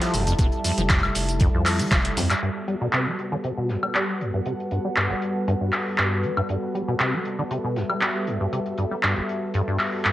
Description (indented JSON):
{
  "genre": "acid house",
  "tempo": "118 BPM",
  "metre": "4/4",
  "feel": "straight",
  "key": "G major",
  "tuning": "A4 = 440 Hz",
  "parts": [
    { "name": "warm analog pad", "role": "sustained chords", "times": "0.0-10.1 s", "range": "G3 to A4", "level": "-32 LUFS", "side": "equal", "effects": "chorus, sidechain pumping" },
    { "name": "liquid acid bass", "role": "riff", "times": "0.0-10.1 s", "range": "F1 to G3", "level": "-26 LUFS", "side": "equal", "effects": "wide subtle chorus, cassette tape, sidechain pumping, tape echo" },
    { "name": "booming analog drum machine", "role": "drums", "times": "0.0-10.1 s", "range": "handclaps, hi-hat, shaker, woodblock", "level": "-24 LUFS", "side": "equal", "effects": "low-pass filter on hats, low-pass filter on perc, low-pass filter on snare, low-pass filter on room" },
    { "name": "crisp fusion drum kit", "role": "drums", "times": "0.0-10.1 s", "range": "hi-hat, snare drum", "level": "-40 LUFS", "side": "left 2 dB", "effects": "sidechain pumping on hats, high-pass filter on hats, low-pass filter on hats, high-pass filter on snare, low-pass filter on snare, high-pass filter on room, low-pass filter on room" },
    { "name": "warbly tape-like pad", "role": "texture", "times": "0.0-10.1 s", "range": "G3 to A5", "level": "-31 LUFS", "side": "equal", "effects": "chorus, built-in reverb, phaser, sidechain pumping" },
    { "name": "saturated sub bass", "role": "bass", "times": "0.1-2.3 s", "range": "F1 to F2", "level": "-27 LUFS", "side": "equal", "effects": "sidechain pumping" },
    { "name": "electronic kick drum", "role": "drums", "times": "0.4-2.0 s", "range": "none", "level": "-21 LUFS", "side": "equal", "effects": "none" }
  ],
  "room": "light reverb, digital ambience",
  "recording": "dry, gritty hardware recording, cassette tape",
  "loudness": "-21 LUFS",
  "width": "side -14 dB against mid",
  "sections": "0.0-2.4 A section; 2.4-10.1 B section",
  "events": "drop 0.0-2.4; drum fill 1.9-2.4; band accent 2.3; filter sweep on acid bass 2.4-10.1",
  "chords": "0.0 Fmaj9; 2.4 Gmaj9"
}